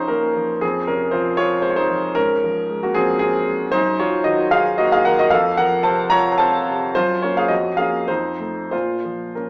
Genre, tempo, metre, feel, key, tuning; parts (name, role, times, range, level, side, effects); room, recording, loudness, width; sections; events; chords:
classical, romantic character piece for solo piano; 91-119 BPM; 3/4; rubato; A4 = 441 Hz
clear grand piano; solo; 0.0-9.5 s; Db2 to Bb5; -16 LUFS; equal
wet recital hall reverb, RT60 1.4 s; worn, warbling old tape, cassette tape, warbly pitch drift, small speaker sound; -16 LUFS; side -36 dB against mid
0.0-9.5 A section
0.0 Bbm/Db; 0.6 Fm; 2.2 Fm/Ab; 3.7 Ebm/Gb; 5.3 F; 7.0 Gbmaj7; 7.5 Bbm/F; 8.1 F7; 8.7 Bbm